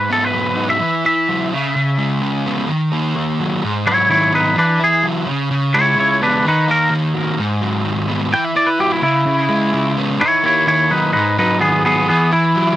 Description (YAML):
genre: rock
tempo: 128 BPM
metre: 4/4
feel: straight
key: unclear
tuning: A4 = 440 Hz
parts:
  - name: twangy electric guitar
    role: melody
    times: 0.0-12.8 s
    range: B3 to G5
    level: -15 LUFS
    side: equal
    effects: cassette tape
  - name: fuzz guitar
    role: riff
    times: 0.0-12.8 s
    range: G#2 to E4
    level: -17 LUFS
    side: equal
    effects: distortion, cassette tape
room: light reverb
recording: home recording on cassette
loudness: -14 LUFS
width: side -14 dB against mid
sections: 0.0-12.8 A section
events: clean electric guitar solo 0.0-12.8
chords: 0.0 G#m7; 0.8 Esus2; 1.5 C#m7; 2.7 D#m; 3.6 G#m7; 4.6 Esus2; 5.3 C#m7; 6.5 D#m; 7.4 G#m7; 8.3 Esus2; 9.0 C#m7; 10.2 D#m; 11.2 G#m7; 12.1 Esus2